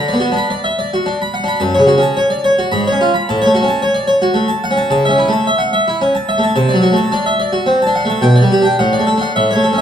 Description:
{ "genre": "classical, baroque-style suite movement for harpsichord", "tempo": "109 BPM", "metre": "3/4", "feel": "rubato", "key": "D major from 4.9 s", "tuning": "A4 = 437 Hz", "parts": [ { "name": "harpsichord", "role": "solo", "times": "0.0-9.8 s", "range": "F#2 to B5", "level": "-12 LUFS", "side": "equal", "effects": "none" } ], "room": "wet recital hall reverb, RT60 1.6 s", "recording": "dark, warm production", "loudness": "-12 LUFS", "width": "side -9 dB against mid", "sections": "0.0-9.8 A section", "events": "none", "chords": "0.0 Bm/D; 1.6 F#m; 2.7 C#7/G#; 3.3 F#m/A; 4.9 A/C#; 6.6 D7/C; 8.2 G/B; 8.8 D/A" }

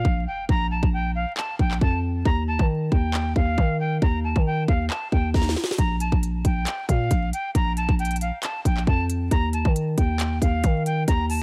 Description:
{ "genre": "hip hop, trap", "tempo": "136 BPM", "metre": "4/4", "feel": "half-time", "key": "unclear", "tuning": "A4 = 440 Hz", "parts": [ { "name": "jazz flute", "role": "melody", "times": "0.0-11.4 s", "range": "F5 to Bb5", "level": "-31 LUFS", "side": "equal", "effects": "low-pass filter" }, { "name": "growling 808-style bass", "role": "bass", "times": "0.0-11.4 s", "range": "Bb1 to Eb3", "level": "-26 LUFS", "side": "equal", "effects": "none" }, { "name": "trap drum kit", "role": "drums", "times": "0.0-11.4 s", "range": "handclaps, hi-hat, kick drum, snare drum", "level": "-25 LUFS", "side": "equal", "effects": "none" }, { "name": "impact", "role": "sound effects", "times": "0.0-0.5 s", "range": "none", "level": "-50 LUFS", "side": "equal", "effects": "none" } ], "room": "little or no reverb", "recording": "vinyl crackle", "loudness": "-23 LUFS", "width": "mono", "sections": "0.0-11.4 A section", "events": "break 0.0-5.8; impact 0.0-0.5; drum fill 5.3-5.8", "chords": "0.0 Bb5; 2.3 Eb; 5.8 Bb5; 9.3 Eb" }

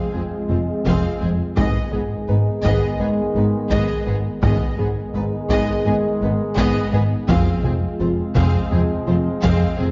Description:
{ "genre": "cinematic, hybrid orchestral and electronic film score", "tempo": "84 BPM", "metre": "4/4", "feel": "straight", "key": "unclear", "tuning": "A4 = 440 Hz", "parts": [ { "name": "warm studio violin section", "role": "melody", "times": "0.0-9.9 s", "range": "Ab4 to F5", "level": "-33 LUFS", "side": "equal", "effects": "none" }, { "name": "warm symphonic violin section", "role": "second line", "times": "0.0-9.9 s", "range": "Cb4 to Ab4", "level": "-34 LUFS", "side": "equal", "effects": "none" }, { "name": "rich symphonic viola section", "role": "accompaniment", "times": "0.0-9.9 s", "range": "Cb4 to C4", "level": "-33 LUFS", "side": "equal", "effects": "none" }, { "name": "mellow French horn section", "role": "sustained chords", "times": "0.0-9.9 s", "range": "Cb4 to Ab4", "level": "-34 LUFS", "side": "equal", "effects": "none" }, { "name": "mellow trombone section", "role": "sustained chords", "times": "0.0-9.9 s", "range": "Eb3 to Ab3", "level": "-30 LUFS", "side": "equal", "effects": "none" }, { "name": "warbly tape-like pad", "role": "sustained chords", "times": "0.0-9.9 s", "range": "Ab3 to Ab4", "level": "-33 LUFS", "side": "equal", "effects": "none" }, { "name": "harp-like synth pluck", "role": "arpeggios", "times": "0.1-9.9 s", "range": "F3 to Ab4", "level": "-32 LUFS", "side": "equal", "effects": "none" }, { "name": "smooth synth bass", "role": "riff", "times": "0.1-9.9 s", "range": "F2 to Ab3", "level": "-27 LUFS", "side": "equal", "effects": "none" }, { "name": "clear symphonic double bass section", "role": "bass", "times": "0.1-9.9 s", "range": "F1 to Ab1", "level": "-28 LUFS", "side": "equal", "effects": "none" }, { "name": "warm symphonic cello section", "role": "bass", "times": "0.1-9.9 s", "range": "F2 to Ab2", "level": "-28 LUFS", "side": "equal", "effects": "none" }, { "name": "taiko ensemble", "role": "drums", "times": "0.9-9.9 s", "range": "none", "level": "-27 LUFS", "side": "equal", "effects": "none" } ], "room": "wet scoring stage reverb, RT60 1.7 s", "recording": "dark, warm production, nothing above 7.5 kHz", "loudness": "-20 LUFS", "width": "mono", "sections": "0.0-9.9 A section", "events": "none", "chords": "0.0 Fm; 1.6 Abm; 7.3 Fm" }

